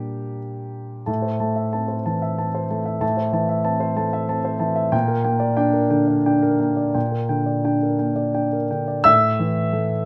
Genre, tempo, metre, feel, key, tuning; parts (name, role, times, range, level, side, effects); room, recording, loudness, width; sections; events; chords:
neoclassical minimalist piano; 82-96 BPM; 3/4; rubato; A4 = 440 Hz
dark grand piano; solo; 0.0-10.1 s; A2 to E6; -21 LUFS; equal
moderate studio reverb, RT60 0.6 s; -21 LUFS; mono
0.0-1.1 A section; 1.1-9.1 B section
0.0 Gm/Bb; 1.1 Am; 4.9 Gm/Bb; 9.1 A5